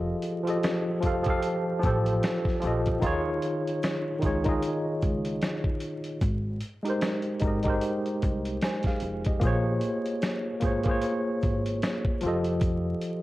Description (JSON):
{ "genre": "lo-fi hip hop", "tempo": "75 BPM", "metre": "4/4", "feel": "swing 57% on 16ths", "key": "Bb dorian", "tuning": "A4 = 438 Hz", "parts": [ { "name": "tine electric piano", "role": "accompaniment", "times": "0.0-13.2 s", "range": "Eb3 to Ab5", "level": "-27 LUFS", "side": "equal", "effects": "overdrive, fast stereo tremolo, low-pass filter" }, { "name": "upright bass", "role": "bass", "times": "0.0-12.9 s", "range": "F1 to Eb2", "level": "-31 LUFS", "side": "equal", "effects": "none" }, { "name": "dusty soul sampler-style drum kit", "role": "drums", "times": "0.2-13.2 s", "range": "hi-hat, kick drum, snare drum", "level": "-29 LUFS", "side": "equal", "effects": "none" }, { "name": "egg shaker", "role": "percussion", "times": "0.2-13.2 s", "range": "none", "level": "-61 LUFS", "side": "left 4 dB", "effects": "none" } ], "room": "light reverb", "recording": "worn, warbling old tape, cassette tape, vinyl crackle, warbly pitch drift", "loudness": "-25 LUFS", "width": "side -17 dB against mid", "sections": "0.0-13.2 A section", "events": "none", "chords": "0.0 F7; 3.0 Eb7sus4; 6.2 Abmaj7; 9.4 Bbm7; 12.2 F7" }